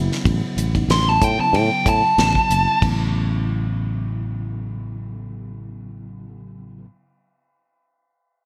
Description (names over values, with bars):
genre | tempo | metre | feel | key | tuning
electric jazz fusion | 93 BPM | 4/4 | swing 54% on 16ths | A lydian | A4 = 440 Hz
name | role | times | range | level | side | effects
tine electric piano | accompaniment | 0.0-6.9 s | C#3 to E4 | -31 LUFS | equal | analog chorus
sustaining fretless electric bass | bass | 0.0-6.8 s | F#1 to A2 | -25 LUFS | equal | none
damped 70s drum kit | drums | 0.1-3.0 s | crash cymbal, hi-hat, kick drum, ride cymbal, snare drum | -26 LUFS | equal | gated reverb
dark smooth lead guitar | melody | 0.9-2.8 s | G5 to C6 | -20 LUFS | equal | overdrive
room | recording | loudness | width
moderate plate reverb, RT60 1.3 s | bright 1980s-style digital production | -19 LUFS | mono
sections
0.0-2.8 A section; 2.8-5.4 B section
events
lead electric guitar solo 0.0-2.8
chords
0.0 A69